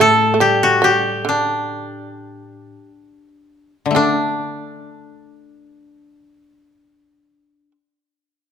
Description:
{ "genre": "japanese traditional", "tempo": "44-73 BPM", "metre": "2/4", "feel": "rubato", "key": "unclear", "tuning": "A4 = 440 Hz", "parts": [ { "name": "koto", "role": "melody", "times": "0.0-7.7 s", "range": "D4 to A4", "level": "-16 LUFS", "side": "left 1 dB", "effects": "none" }, { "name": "shamisen", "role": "second line", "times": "0.0-7.7 s", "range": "D3 to A3", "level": "-20 LUFS", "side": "right 4 dB", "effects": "none" }, { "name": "koto", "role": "accompaniment", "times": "0.0-7.8 s", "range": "A2 to D4", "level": "-23 LUFS", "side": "left 5 dB", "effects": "none" } ], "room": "moderate recital hall reverb, RT60 1.5 s", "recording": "close, detailed microphones", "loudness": "-15 LUFS", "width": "side -8 dB against mid", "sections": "0.0-4.0 A section; 4.0-8.5 B section", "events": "slowing down 0.0-4.0", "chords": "none" }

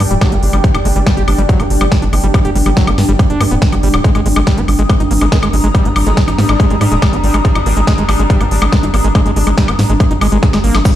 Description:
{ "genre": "psychedelic trance", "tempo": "141 BPM", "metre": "4/4", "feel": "straight", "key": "unclear", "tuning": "A4 = 441 Hz", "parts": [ { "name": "pulsing gated texture", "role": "sustained chords", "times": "0.0-11.0 s", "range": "G3 to D4", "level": "-19 LUFS", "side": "equal", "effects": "chorus, built-in reverb, sidechain pumping" }, { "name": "overdriven acid bass", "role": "riff", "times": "0.0-10.9 s", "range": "F#3 to G4", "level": "-19 LUFS", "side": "left 1 dB", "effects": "auto-pan, sidechain pumping, tape echo" }, { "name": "tight sequencer bass", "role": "bass", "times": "0.0-10.8 s", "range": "D1 to Ab2", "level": "-14 LUFS", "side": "equal", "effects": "none" }, { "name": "big-room dance drum kit", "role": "drums", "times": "0.0-10.9 s", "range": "crash cymbal, hi-hat, snare drum, woodblock", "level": "-20 LUFS", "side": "left 1 dB", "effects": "overdrive" }, { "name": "airy breathy pad", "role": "texture", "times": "0.0-11.0 s", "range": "G4 to Eb6", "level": "-22 LUFS", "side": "equal", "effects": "chorus, sidechain pumping" }, { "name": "formant-sweep wobble bass", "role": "second line", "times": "0.2-0.4, 5.3-6.8 s", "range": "G3 to D4", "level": "-27 LUFS", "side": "left 3 dB", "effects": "analog chorus, sidechain pumping, high-pass filter, digital delay" }, { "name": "electronic kick drum", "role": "drums", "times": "0.2-10.9 s", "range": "none", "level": "-13 LUFS", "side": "equal", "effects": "overdrive" }, { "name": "swell", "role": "sound effects", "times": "10.1-10.9 s", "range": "none", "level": "-28 LUFS", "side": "right 1 dB", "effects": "none" }, { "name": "cabasa", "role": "percussion", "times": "10.9 s", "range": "none", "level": "-28 LUFS", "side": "right 2 dB", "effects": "none" } ], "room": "digital ambience", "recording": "played on a big sound system in a bare room, large studio reverb", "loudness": "-10 LUFS", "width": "side -12 dB against mid", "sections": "0.0-11.0 A section", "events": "swell 10.1-10.9; drum fill 10.4-10.9", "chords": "0.0 G5; 4.0 Ab5" }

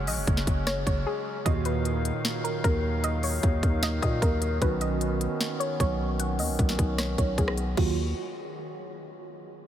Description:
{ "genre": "hip hop, trap", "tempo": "152 BPM", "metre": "4/4", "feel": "half-time", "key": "Eb minor", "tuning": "A4 = 441 Hz", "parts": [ { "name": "soft round pluck", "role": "melody", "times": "0.0-8.0 s", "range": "Gb4 to F#5", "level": "-32 LUFS", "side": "equal", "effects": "chorus, low-pass filter, diffuse ambient delay" }, { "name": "warbly lo-fi synth keys", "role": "accompaniment", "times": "0.0-8.0 s", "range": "Bb2 to Ab4", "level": "-34 LUFS", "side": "right 5 dB", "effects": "chorus, low-pass filter" }, { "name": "accordion", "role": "sustained chords", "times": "0.0-8.0 s", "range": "Eb3 to F5", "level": "-36 LUFS", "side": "left 1 dB", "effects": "low-pass filter" }, { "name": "growling 808-style bass", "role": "bass", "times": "0.0-8.1 s", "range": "Gb1 to Bb2", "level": "-28 LUFS", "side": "equal", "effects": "none" }, { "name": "trap drum kit", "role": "drums", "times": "0.1-7.9 s", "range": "crash cymbal, hi-hat, kick drum, rim click, snare drum", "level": "-28 LUFS", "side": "equal", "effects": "none" } ], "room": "moderate huge ambient reverb, RT60 7.9 s", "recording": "dreamy mix soaked in reverb", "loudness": "-24 LUFS", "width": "side -11 dB against mid", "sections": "0.0-7.8 A section; 7.8-9.4 B section", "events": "filter sweep 0.0-7.8; break 1.1-1.5", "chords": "0.0 Gbsus2; 1.5 Ebmadd9; 4.6 Badd9; 7.8 Ebmadd9" }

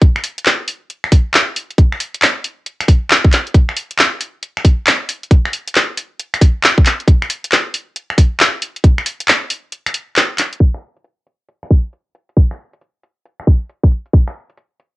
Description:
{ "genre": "UK garage", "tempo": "136 BPM", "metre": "4/4", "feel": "swing 65% on 16ths", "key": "none", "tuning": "none", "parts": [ { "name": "electronic kick drum", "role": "drums", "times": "0.0-14.2 s", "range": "none", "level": "-9 LUFS", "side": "equal", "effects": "cassette tape" }, { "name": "garage drum kit", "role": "drums", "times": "0.0-14.9 s", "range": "finger snaps, handclaps, hi-hat", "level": "-14 LUFS", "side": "equal", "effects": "cassette tape" } ], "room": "light reverb", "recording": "home recording on cassette, low-pass filter", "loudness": "-12 LUFS", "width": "side -19 dB against mid", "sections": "0.0-10.6 A section; 10.6-15.0 B section", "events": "break 9.7-10.6", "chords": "none" }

